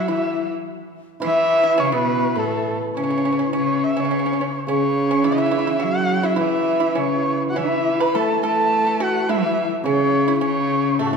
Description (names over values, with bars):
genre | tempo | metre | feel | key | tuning
chinese traditional, Chinese chamber ensemble | 105 BPM | 2/4 | rubato | unclear | A4 = 441 Hz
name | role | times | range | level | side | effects
dark erhu | melody | 0.0-11.2 s | F#4 to B5 | -22 LUFS | equal | none
clear cello | second line | 0.0-11.2 s | A2 to A3 | -25 LUFS | right 3 dB | none
mellow low xiao | second line | 0.0-11.2 s | C#4 to B4 | -24 LUFS | left 7 dB | none
pipa | second line | 0.0-11.2 s | A3 to B4 | -27 LUFS | right 5 dB | none
hammered dulcimer | accompaniment | 1.2-11.2 s | A2 to E3 | -25 LUFS | right 2 dB | none
room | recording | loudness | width
wet concert hall reverb, RT60 2.3 s | recorded in a church or concert hall | -17 LUFS | side -5 dB against mid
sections
0.0-3.0 A section; 3.0-11.2 B section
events
none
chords
none